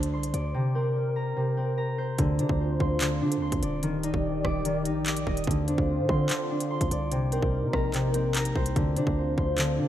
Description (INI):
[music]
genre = hip hop, drill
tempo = 146 BPM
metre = 4/4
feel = half-time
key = D phrygian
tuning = A4 = 440 Hz
[part]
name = warm velvety synth lead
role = second line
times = 0.0-9.9 s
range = Bb4 to D5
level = -33 LUFS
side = left 1 dB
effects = chorus, digital delay
[part]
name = concert harp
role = arpeggios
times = 0.0-9.9 s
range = C3 to D6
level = -27 LUFS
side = equal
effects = digital delay
[part]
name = hard-hitting 808-style bass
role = bass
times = 0.0-9.9 s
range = Eb1 to D3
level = -32 LUFS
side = equal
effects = none
[part]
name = drill drum kit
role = drums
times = 0.0-9.7 s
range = handclaps, hi-hat, kick drum, rim click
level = -30 LUFS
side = equal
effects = none
[part]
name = dark analog pad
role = sustained chords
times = 2.2-9.9 s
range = C3 to D5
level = -36 LUFS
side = right 1 dB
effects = chorus
[sound]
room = light reverb, digital ambience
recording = rough home demo mix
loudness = -24 LUFS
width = side -12 dB against mid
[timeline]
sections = 0.0-2.2 A section; 2.2-9.9 B section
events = none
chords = 0.0 D7(no3); 0.5 Bbsus2/C; 2.2 Dm7; 3.8 Ebmaj7; 5.5 Dm7; 7.1 Cm7; 8.8 Dm7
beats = 0.13 | 0.54 0.95 1.36 1.77 | 2.19 2.60 3.01 3.42 | 3.83 4.24 4.65 5.06 | 5.47 5.88 6.29 6.71 | 7.12 7.53 7.94 8.35 | 8.76 9.17 9.58